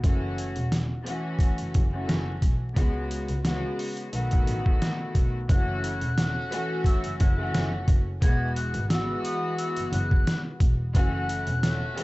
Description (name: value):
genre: hip hop, boom-bap hip-hop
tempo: 88 BPM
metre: 4/4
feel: swing 55% on 16ths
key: F# dorian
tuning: A4 = 435 Hz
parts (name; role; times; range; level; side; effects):
- clear studio string section; accompaniment; 0.0-12.0 s; C#3 to F#4; -31 LUFS; left 1 dB; cassette tape, high-pass filter, low-pass filter
- warm double bass; bass; 0.0-11.6 s; E1 to C#2; -29 LUFS; equal; none
- trip hop sampler-style drum kit; drums; 0.0-12.0 s; hi-hat, kick drum, snare drum; -24 LUFS; equal; none
- silver concert flute; melody; 5.5-12.0 s; D#6 to G#6; -33 LUFS; left 1 dB; high-pass filter, low-pass filter
- warm horn section; stabs; 5.8-12.0 s; A3 to A4; -38 LUFS; right 1 dB; high-pass filter, low-pass filter, digital delay
room: small room reverb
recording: dark, warm production, vinyl crackle, nothing above 8.0 kHz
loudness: -23 LUFS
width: side -20 dB against mid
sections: 0.0-5.5 A section; 5.5-12.0 B section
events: none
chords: 0.0 F#m7; 2.8 C#7sus4; 4.1 B7; 5.5 F#m7; 8.2 Eadd9; 10.9 F#m7